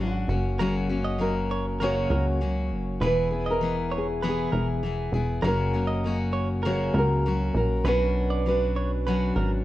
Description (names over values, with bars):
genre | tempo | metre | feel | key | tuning
acoustic pop | 99 BPM | 4/4 | straight | F# mixolydian | A4 = 441 Hz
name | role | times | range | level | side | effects
nylon-string guitar | melody | 0.0-9.6 s | F#4 to C#5 | -29 LUFS | right 1 dB | plate reverb, tape echo
picked steel-string acoustic guitar | accompaniment | 0.0-9.6 s | F#2 to G#4 | -28 LUFS | left 3 dB | plate reverb
plucky analog bass | bass | 0.0-9.6 s | E1 to C#2 | -27 LUFS | equal | none
direct-recorded clean electric guitar | arpeggios | 0.6-9.5 s | A#4 to D#5 | -34 LUFS | right 4 dB | plate reverb
room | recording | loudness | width
light reverb | worn, warbling old tape, cassette tape, warbly pitch drift | -23 LUFS | side -15 dB against mid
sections
0.0-9.6 A section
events
none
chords
0.3 F#; 3.0 E; 5.4 F#; 7.9 Bmadd9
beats
0.00 | 0.60 1.21 1.81 2.42 | 3.02 3.63 4.23 4.83 | 5.44 6.04 6.65 7.25 | 7.86 8.46 9.07